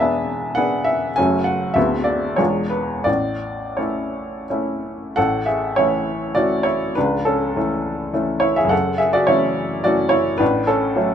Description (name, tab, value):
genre	classical, romantic character piece for solo piano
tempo	83-109 BPM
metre	3/4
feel	rubato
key	A major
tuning	A4 = 439 Hz
part	bright upright piano	solo	0.0-11.1 s	C#1 to A5	-17 LUFS	equal	none
room	little or no reverb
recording	close, detailed microphones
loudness	-17 LUFS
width	side -9 dB against mid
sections	0.0-5.2 A section; 5.2-11.1 A section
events	none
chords	0.0 E7; 1.2 F#m; 1.8 Bm7/D; 2.4 E7b9; 3.1 A; 7.0 A/C#; 8.7 F#m7; 10.4 F#m/A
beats	0.01 0.57 | 1.17 1.76 2.39 | 3.07 3.78 4.48 | 5.16 5.78 6.36 | 6.95 7.55 8.14 | 8.72 9.29 9.85 | 10.41 10.97